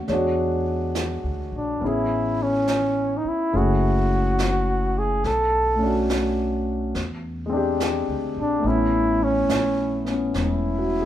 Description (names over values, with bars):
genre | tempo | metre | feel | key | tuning
jazz ballad | 70 BPM | 4/4 | swing 66% on 8ths | A major | A4 = 440 Hz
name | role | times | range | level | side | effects
mellow flugelhorn | melody | 0.0-11.1 s | C#4 to A4 | -23 LUFS | equal | none
warm concert grand piano | accompaniment | 0.0-11.1 s | G#3 to C#5 | -24 LUFS | left 1 dB | none
upright bass | bass | 0.0-11.1 s | E1 to E2 | -27 LUFS | equal | none
jazz brush drum kit | drums | 0.1-11.1 s | brushed snare drum, hi-hat, snare drum | -32 LUFS | right 2 dB | none
room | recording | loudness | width
light reverb | band playing live in one room | -20 LUFS | side -12 dB against mid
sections
0.0-11.1 A section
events
none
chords
0.1 E13; 1.8 Amaj9; 3.5 F#m9; 5.2 Bm7; 6.9 E7alt; 8.6 Aadd9